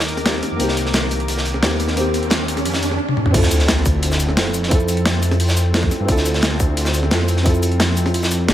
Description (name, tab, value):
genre	liquid drum and bass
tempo	175 BPM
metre	4/4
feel	straight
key	D phrygian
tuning	A4 = 440 Hz
part	soft round pluck	melody	0.0-3.0 s	none	barely audible	none	none
part	felt-muted upright piano	accompaniment	0.0-8.5 s	Bb3 to A4	-24 LUFS	equal	dub echo
part	warm analog pad	sustained chords	0.0-8.5 s	Eb3 to D6	-29 LUFS	left 3 dB	chorus, tremolo
part	dark detuned saw bass	bass	0.0-8.5 s	D1 to G2	-20 LUFS	equal	none
part	crunchy breakbeat drum kit	drums	0.0-8.5 s	hi-hat, snare drum	-24 LUFS	equal	high-pass filter on hats, high-pass filter on snare, high-pass filter on room
part	riser and sub drop	sound effects	0.0-4.7 s	none	-25 LUFS	right 1 dB	none
part	breakbeat sampler-style drum kit	drums	0.1-8.5 s	cabasa, crash cymbal, hi-hat, snare drum, toms	-22 LUFS	equal	overdrive
part	electronic kick drum	drums	3.3-7.5 s	none	-18 LUFS	equal	none
room	light reverb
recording	none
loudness	-15 LUFS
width	side -12 dB against mid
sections	0.0-3.3 A section; 3.3-8.5 B section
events	build-up 0.0-3.3; riser 0.0-3.0; drum fill 3.1; drop 3.3-8.5; impact 3.3-4.7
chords	0.0 Cm9; 3.3 Dm9